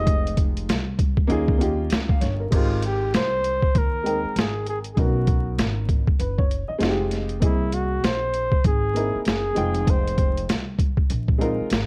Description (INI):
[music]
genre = hip hop, jazz-hop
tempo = 98 BPM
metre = 4/4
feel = swing 62% on 16ths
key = Ab major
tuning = A4 = 440 Hz
[part]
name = breathy flugelhorn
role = melody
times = 0.0-10.5 s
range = E4 to Eb5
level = -28 LUFS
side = equal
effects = none
[part]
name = dark upright piano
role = accompaniment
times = 0.0-11.9 s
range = Ab3 to G5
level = -30 LUFS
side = equal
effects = none
[part]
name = upright bass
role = bass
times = 0.0-11.9 s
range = F1 to Eb2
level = -30 LUFS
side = equal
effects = none
[part]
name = boom bap sampler-style drum kit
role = drums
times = 0.1-11.9 s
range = crash cymbal, hi-hat, kick drum, snare drum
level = -24 LUFS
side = equal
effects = none
[sound]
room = small room ambience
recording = worn, warbling old tape, cassette tape, vinyl crackle, warbly pitch drift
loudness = -22 LUFS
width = mono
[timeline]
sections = 0.0-2.5 A section; 2.5-11.9 B section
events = flugelhorn solo 0.0-2.5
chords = 0.0 Fm7; 1.3 Eb9sus4; 2.5 Abmaj9; 5.0 Bmaj7; 6.8 Fm7; 7.4 C7alt; 9.6 Fm7